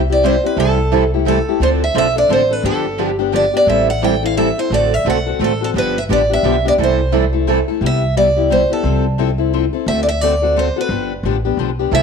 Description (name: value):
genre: acoustic string swing (jazz manouche)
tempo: 174 BPM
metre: 3/4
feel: swing 60% on 8ths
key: C major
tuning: A4 = 440 Hz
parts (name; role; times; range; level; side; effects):
- upright bass; bass; 0.0-12.0 s; G1 to D2; -20 LUFS; equal; none
- picked steel-string acoustic guitar; melody; 0.1-12.0 s; A4 to G5; -17 LUFS; right 1 dB; none
- picked steel-string acoustic guitar; accompaniment; 0.1-12.0 s; C3 to A4; -19 LUFS; left 13 dB; none
- picked steel-string acoustic guitar; accompaniment; 0.2-7.6, 11.9-12.0 s; C3 to A4; -20 LUFS; right 12 dB; none
room: moderate echo chamber reverb, RT60 2.1 s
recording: 1960s-style stereo with parts hard left and right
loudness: -13 LUFS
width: side -6 dB against mid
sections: 0.0-7.8 A section; 7.8-12.0 B section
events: none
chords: 0.0 C; 0.6 Am7/C; 1.6 Dm7; 2.6 G7; 3.7 Am7; 4.7 D7/A; 5.7 G7; 6.8 C6; 7.8 Cmaj7; 8.8 Fmaj7/C; 9.9 D7; 10.9 G7